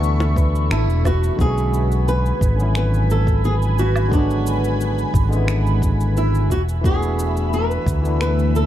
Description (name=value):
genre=sunset chillout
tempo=88 BPM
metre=4/4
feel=straight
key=B dorian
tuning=A4 = 442 Hz
part: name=barky tine electric piano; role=accompaniment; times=0.0-8.7 s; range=D3 to C#5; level=-25 LUFS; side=left 1 dB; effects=overdrive, auto-pan, digital delay
part: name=airy breathy pad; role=sustained chords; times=0.0-8.7 s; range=A3 to C#6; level=-28 LUFS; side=equal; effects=chorus, phaser, shimmer reverb
part: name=fretless electric bass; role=bass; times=0.0-8.7 s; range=E1 to D2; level=-19 LUFS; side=equal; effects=none
part: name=electronic cabasa, finger snaps and woodblock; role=drums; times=0.0-8.7 s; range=none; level=-32 LUFS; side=right 1 dB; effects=none
part: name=bongos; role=percussion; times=0.2-1.2 s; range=none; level=-30 LUFS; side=left 1 dB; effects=none
part: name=soft round pluck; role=arpeggios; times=0.4-1.1 s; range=B4 to A5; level=-35 LUFS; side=left 1 dB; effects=none
part: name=electronic kick drum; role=drums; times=0.4-8.0 s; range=none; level=-20 LUFS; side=equal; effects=none
part: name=flamenco guitar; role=melody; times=0.7-8.7 s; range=D4 to B4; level=-25 LUFS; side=right 1 dB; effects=tape echo, shimmer reverb
room=little or no reverb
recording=dark, warm production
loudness=-16 LUFS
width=side -12 dB against mid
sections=0.0-1.4 A section; 1.4-8.7 A section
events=filter sweep on tine electric piano 0.0-1.4; filter sweep on synth pluck 0.0-1.4; band accent 0.7-1.1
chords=0.0 E7sus4; 1.4 Bm69; 6.5 E7sus4